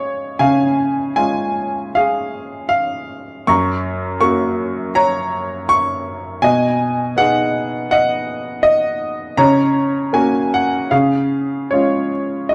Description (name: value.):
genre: classical, lyrical solo piano.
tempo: 72-83 BPM.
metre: 4/4.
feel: rubato.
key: F# major.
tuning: A4 = 440 Hz.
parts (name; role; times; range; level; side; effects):
bright baby grand piano; solo; 0.0-12.5 s; F#2 to C#6; -18 LUFS; equal; none.
room: moderate studio reverb, RT60 0.6 s.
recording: dark, warm production, lossy compression artefacts.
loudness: -17 LUFS.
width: mono.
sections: 0.0-12.5 A section.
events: none.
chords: 0.0 C#; 3.5 F#; 6.4 B6; 9.4 F#/C#; 10.9 C#.